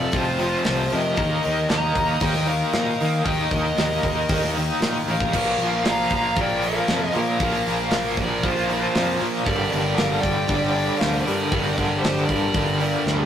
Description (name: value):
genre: hard rock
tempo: 116 BPM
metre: 4/4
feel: straight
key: G minor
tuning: A4 = 440 Hz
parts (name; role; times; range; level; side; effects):
- biting lead guitar; melody; 0.0-13.3 s; C5 to Bb5; -26 LUFS; left 2 dB; overdrive
- bluesy overdriven lead guitar; second line; 0.0-13.3 s; F4 to F5; -29 LUFS; right 1 dB; distortion
- overdriven electric guitar; riff; 0.0-13.3 s; F2 to Eb4; -30 LUFS; left 4 dB; none
- overdriven electric guitar; riff; 0.0-13.3 s; F2 to Eb4; -26 LUFS; equal; tremolo
- picked electric bass; bass; 0.0-13.3 s; F1 to Eb3; -28 LUFS; equal; none
- tight metal drum kit; drums; 0.1-13.2 s; crash cymbal, hi-hat, kick drum, snare drum; -26 LUFS; equal; none
- distorted electric guitar; riff; 5.3-13.3 s; G2 to Bb3; -28 LUFS; right 4 dB; overdrive
room: moderate studio reverb, RT60 0.6 s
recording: rough rehearsal-room recording, tube saturation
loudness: -19 LUFS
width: side -9 dB against mid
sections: 0.0-13.3 A section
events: drum fill 13.1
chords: 0.0 F5; 1.2 Eb5; 5.3 Bb5; 9.5 Gm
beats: 0.14 0.66 | 1.18 1.70 2.22 2.74 | 3.26 3.78 4.30 4.82 | 5.33 5.85 6.37 6.89 | 7.40 7.92 8.43 8.95 | 9.46 9.98 10.49 11.01 | 11.52 12.03 12.55 13.06